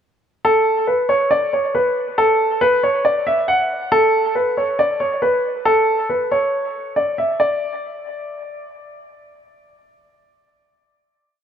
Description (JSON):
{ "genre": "hip hop", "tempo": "138 BPM", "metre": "4/4", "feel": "half-time", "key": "unclear", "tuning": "A4 = 440 Hz", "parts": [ { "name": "dark baby grand piano", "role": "solo", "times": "0.4-8.7 s", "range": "A4 to F#5", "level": "-16 LUFS", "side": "equal", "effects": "low-pass filter, dub echo" } ], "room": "light reverb, studio reverb", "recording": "echo-heavy mix", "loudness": "-15 LUFS", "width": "side -8 dB against mid", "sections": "0.4-7.4 hook; 7.4-10.9 final note", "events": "none", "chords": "none" }